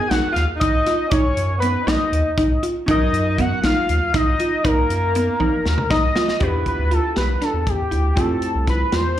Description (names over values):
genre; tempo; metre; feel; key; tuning
progressive instrumental, band music in an uneven meter; 238 BPM (eighths); 7/8; straight; unclear; A4 = 441 Hz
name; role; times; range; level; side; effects
octave-doubled lead; melody; 0.0-9.2 s; G4 to G#5; -22 LUFS; left 2 dB; chorus, slapback echo
clear alto saxophone; second line; 0.0-5.9 s; A#3 to G#4; -28 LUFS; right 1 dB; slapback echo, digital delay
vintage hollow-body jazz guitar; accompaniment; 0.0-9.2 s; F#3 to A#5; -29 LUFS; right 1 dB; slapback echo
mallet-like synth pluck; arpeggios; 0.1-9.1 s; B3 to G4; -24 LUFS; right 1 dB; chorus, slapback echo, digital delay
round analog bass; bass; 0.1-9.2 s; A#1 to F#2; -22 LUFS; equal; none
modern studio drum kit; drums; 0.1-9.0 s; hi-hat, kick drum, snare drum, toms; -25 LUFS; equal; none
room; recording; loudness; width
light reverb, small room ambience; live gig heard through the venue's PA, club ambience; -17 LUFS; side -11 dB against mid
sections
0.0-6.4 A section; 6.4-9.2 B section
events
drum fill 5.4-6.4; hollow-body jazz guitar fill 5.7-6.4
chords
0.0 Bmaj7; 6.4 Em7; 8.2 Fmaj7